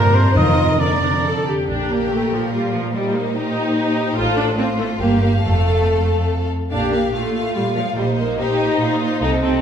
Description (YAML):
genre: classical, dramatic, fast romantic movement for symphony orchestra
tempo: 134-149 BPM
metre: 3/4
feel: rubato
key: Bb major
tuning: A4 = 441 Hz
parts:
  - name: warm symphonic violin section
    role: melody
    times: 0.0-9.6 s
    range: A4 to F5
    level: -27 LUFS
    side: left 3 dB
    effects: none
  - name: clear oboe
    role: second line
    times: 0.0-1.5 s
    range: Bb4 to Eb5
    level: -22 LUFS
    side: right 3 dB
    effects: none
  - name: rich symphonic violin section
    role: second line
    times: 0.0-9.6 s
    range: Eb4 to Eb5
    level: -24 LUFS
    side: left 2 dB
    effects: none
  - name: rich symphonic viola section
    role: accompaniment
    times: 0.0-9.6 s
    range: F3 to A4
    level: -21 LUFS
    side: equal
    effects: none
  - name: clear studio double bass section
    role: bass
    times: 0.0-2.1, 4.2-9.6 s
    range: F1 to G2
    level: -23 LUFS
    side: right 1 dB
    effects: none
  - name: rich symphonic cello section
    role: bass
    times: 0.0-9.6 s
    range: F2 to Eb3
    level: -22 LUFS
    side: right 1 dB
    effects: none
  - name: timpani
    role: percussion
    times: 0.4-1.0 s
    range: F2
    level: -23 LUFS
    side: left 1 dB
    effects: none
room: wet recital hall reverb, RT60 1.8 s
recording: recorded in a church or concert hall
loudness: -16 LUFS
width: side -8 dB against mid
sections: 0.0-1.7 A section; 1.7-9.6 B section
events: none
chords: 0.4 Bb/F; 1.2 F; 1.7 Bb5; 2.9 Cm7/Bb; 4.2 F/A; 5.0 Gm7; 5.4 F; 6.7 Bb5; 8.0 Cm7/Bb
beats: | 0.35 0.80 1.25 | 1.69 2.10 2.52 | 2.92 3.35 3.75 | 4.16 4.57 5.00 | 5.42 5.85 6.28 | 6.72 7.14 7.55 | 7.96 8.39 8.81 | 9.22